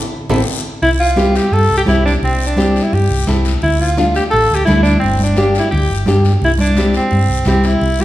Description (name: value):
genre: latin, cumbia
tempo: 172 BPM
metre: 4/4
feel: straight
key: unclear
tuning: A4 = 440 Hz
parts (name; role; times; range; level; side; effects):
- nylon-string guitar; accompaniment; 0.3-7.7 s; A3 to A4; -19 LUFS; left 1 dB; none
- hollow-body short-scale fingered electric bass; bass; 0.3-8.0 s; G1 to G2; -16 LUFS; equal; none
- congas; percussion; 0.3-8.0 s; none; -20 LUFS; equal; none
- guiro; percussion; 0.3-8.0 s; none; -28 LUFS; left 5 dB; none
- bright alto saxophone; melody; 0.8-8.0 s; C4 to A4; -16 LUFS; equal; none
room: wet recital hall reverb, RT60 1.4 s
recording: recorded in a church or concert hall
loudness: -11 LUFS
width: side -14 dB against mid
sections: 0.8-8.0 A section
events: drum fill 0.0-0.8; band accent 0.0-0.8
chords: 0.0 Am; 0.8 C; 3.6 Dm; 5.0 Gm; 6.4 C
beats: 0.12 0.47 | 0.82 1.17 1.52 1.87 | 2.22 2.57 2.92 3.27 | 3.62 3.97 4.32 4.67 | 5.02 5.37 5.72 6.07 | 6.42 6.77 7.12 7.46 | 7.81